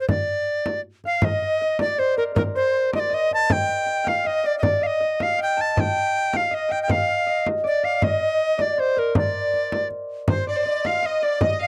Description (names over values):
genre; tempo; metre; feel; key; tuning
medieval dance; 159 BPM; 3/4; straight; unclear; A4 = 440 Hz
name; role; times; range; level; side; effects
bright reedy tenor recorder; melody; 0.0-11.7 s; Bb4 to A5; -24 LUFS; equal; none
frame drum; percussion; 0.1-11.6 s; none; -27 LUFS; equal; none
Celtic harp; second line; 1.1-11.7 s; Bb4 to A5; -29 LUFS; equal; none
rich fiddle; second line; 10.3-11.7 s; C5 to F5; -32 LUFS; equal; none
room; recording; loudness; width
little or no reverb; dry, close 1970s-style studio recording; -22 LUFS; mono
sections
0.0-1.2 A section; 1.2-10.3 A section; 10.3-11.7 B section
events
none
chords
none